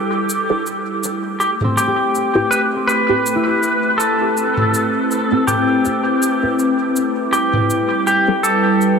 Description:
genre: ambient dub.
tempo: 81 BPM.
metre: 4/4.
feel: swing 55% on 16ths.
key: A minor.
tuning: A4 = 441 Hz.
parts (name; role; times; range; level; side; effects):
clean lap steel guitar; melody; 0.0-9.0 s; G4 to B4; -17 LUFS; equal; dub echo.
warbly tape-like pad; sustained chords; 0.0-9.0 s; G3 to G5; -20 LUFS; equal; chorus, built-in reverb, phaser.
filtered dub chord stab; stabs; 0.0-8.4 s; A2 to B4; -25 LUFS; equal; phaser, analog chorus, dub echo.
electronic cabasa and toms; drums; 0.3-9.0 s; none; -23 LUFS; equal; none.
concert harp; arpeggios; 1.6-6.0 s; C4 to G4; -25 LUFS; left 2 dB; dub echo.
room: wet huge ambient reverb, RT60 7.9 s.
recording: none.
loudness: -14 LUFS.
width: side -6 dB against mid.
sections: 0.0-9.0 A section.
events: filter sweep on ambient pad 0.0-9.0.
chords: 0.0 G69; 1.0 Am9; 7.0 G69.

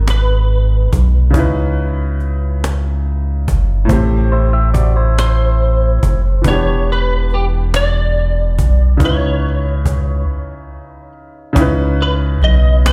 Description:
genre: slow six-eight R&B.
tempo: 47 BPM (dotted quarters).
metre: 6/8.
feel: straight.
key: unclear.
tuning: A4 = 444 Hz.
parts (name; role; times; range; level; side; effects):
clean electric guitar; melody; 0.0-1.0, 5.2-12.9 s; G4 to D#5; -24 LUFS; equal; ensemble chorus.
clear concert grand piano; accompaniment; 0.0-12.9 s; A2 to F#5; -23 LUFS; equal; none.
rubbery square bass; bass; 0.0-12.9 s; E1 to C#2; -16 LUFS; equal; none.
cajon; drums; 0.1-12.9 s; none; -21 LUFS; equal; none.
clean electric guitar; second line; 4.3-6.2 s; E4 to E5; -25 LUFS; equal; spring reverb, digital delay.
room: studio reverb.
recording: played on a big sound system in a bare room, large studio reverb.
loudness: -15 LUFS.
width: mono.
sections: 0.0-11.6 A section; 11.6-12.9 B section.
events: break 10.3-11.6.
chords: 0.0 G#m7; 1.3 C#m9; 3.9 Am7; 6.5 Em9; 9.0 C#m9.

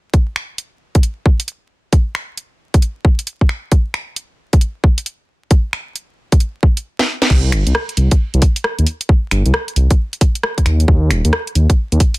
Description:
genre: UK garage, two-step garage.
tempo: 134 BPM.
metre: 4/4.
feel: swing 64% on 16ths.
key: C minor.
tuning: A4 = 440 Hz.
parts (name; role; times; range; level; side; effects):
electronic kick drum; drums; 0.1-12.1 s; none; -12 LUFS; equal; none.
garage drum kit; drums; 0.1-12.2 s; crash cymbal, finger snaps, hi-hat, rim click, snare drum; -19 LUFS; equal; soft clipping on snare.
dark detuned saw bass; bass; 7.3-12.0 s; Eb1 to Eb2; -13 LUFS; equal; tube saturation, sidechain pumping.
room: little or no reverb.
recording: dense, heavily limited modern master, vinyl crackle.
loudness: -13 LUFS.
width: side -21 dB against mid.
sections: 0.1-7.3 A section; 7.3-12.2 B section.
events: drum fill 7.0-7.3.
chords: none.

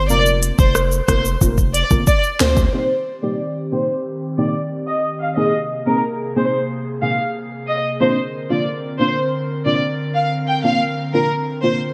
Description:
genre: dancehall.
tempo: 91 BPM.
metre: 4/4.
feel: straight.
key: Bb mixolydian.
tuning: A4 = 440 Hz.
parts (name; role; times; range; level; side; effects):
warm studio violin section; melody; 0.0-11.8 s; Bb4 to G5; -23 LUFS; equal; low-pass filter.
hard-hitting 808-style bass; bass; 0.0-2.7 s; F1 to D2; -22 LUFS; equal; none.
deep mellow chord stab; accompaniment; 0.1-11.8 s; Bb3 to Bb4; -23 LUFS; equal; chorus, phaser, sidechain pumping, low-pass filter.
afro-pop drum kit; drums; 0.1-2.7 s; hi-hat, kick drum, rim click, shaker, snare drum; -20 LUFS; equal; gated reverb.
airy breathy pad; sustained chords; 3.0-11.9 s; C3 to Bb4; -28 LUFS; equal; chorus, sidechain pumping, low-pass filter.
room: light reverb.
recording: bright 1980s-style digital production.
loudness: -19 LUFS.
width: mono.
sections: 0.0-2.7 A section; 2.7-11.9 B section.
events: drum fill 1.4-2.7; filter sweep 2.7-11.9.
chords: 0.0 Fsus4; 2.7 Eb6; 5.4 Abadd9; 8.0 Bbadd9.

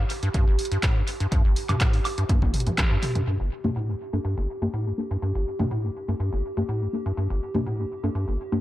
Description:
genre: acid house.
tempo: 123 BPM.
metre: 4/4.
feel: straight.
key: G minor.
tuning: A4 = 437 Hz.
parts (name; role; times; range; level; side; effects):
warbly tape-like pad; sustained chords; 0.0-8.6 s; G4; -34 LUFS; equal; chorus, built-in reverb, sidechain pumping.
acid bass, square; riff; 0.0-8.6 s; G1 to A2; -26 LUFS; equal; overdrive, wide subtle chorus.
punchy analog drum machine; drums; 0.1-7.6 s; handclaps, hi-hat, toms, woodblock; -29 LUFS; equal; tape echo.
electronic kick drum; drums; 0.3-2.9 s; none; -22 LUFS; equal; none.
deep mellow chord stab; stabs; 3.6-8.6 s; Bb3 to A4; -30 LUFS; left 2 dB; chorus, tape echo.
room: light reverb, digital ambience.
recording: echo-heavy mix.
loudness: -23 LUFS.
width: side -15 dB against mid.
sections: 0.0-3.3 A section; 3.3-8.6 B section.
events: drum fill 2.3-3.3; band accent 2.8; filter sweep on acid bass 3.3-8.6.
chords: 0.0 N.C.; 3.3 Gm.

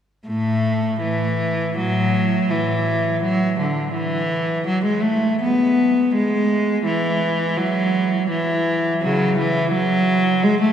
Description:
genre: classical, baroque-style suite movement for unaccompanied cello.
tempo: 83 BPM.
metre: 4/4.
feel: rubato.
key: A major.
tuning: A4 = 441 Hz.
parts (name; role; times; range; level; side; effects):
rich cello; solo; 0.3-10.7 s; A2 to B3; -17 LUFS; equal; none.
room: wet cathedral reverb, RT60 5.0 s.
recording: recorded in a church or concert hall.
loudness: -17 LUFS.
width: side -9 dB against mid.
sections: 0.3-10.7 A section.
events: none.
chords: none.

